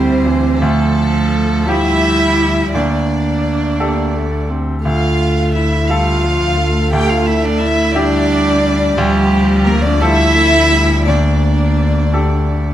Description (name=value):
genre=neoclassical piano and strings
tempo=57 BPM (dotted quarters)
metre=6/8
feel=rubato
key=D minor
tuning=A4 = 440 Hz
part: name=warm chamber violin section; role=melody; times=0.0-12.7 s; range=G4 to G5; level=-19 LUFS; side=left 1 dB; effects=none
part: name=dark cello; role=second line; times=0.0-12.7 s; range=G3 to G4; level=-17 LUFS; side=right 2 dB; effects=none
part: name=bright baby grand piano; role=accompaniment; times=0.0-12.7 s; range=D2 to A4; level=-21 LUFS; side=equal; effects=none
part: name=dark viola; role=accompaniment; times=0.0-12.7 s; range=E3 to C4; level=-22 LUFS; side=right 1 dB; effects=none
part: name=dark double bass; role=bass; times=0.0-12.7 s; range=D2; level=-17 LUFS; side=left 1 dB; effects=none
room=light reverb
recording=close, detailed microphones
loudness=-12 LUFS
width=side -11 dB against mid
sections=0.0-12.7 A section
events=none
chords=0.0 Cadd9/D; 0.6 Fadd9/D; 2.7 Gmadd9/D; 4.9 Dm; 6.9 Dsus24; 9.0 Fadd9/D; 11.1 Gmadd9/D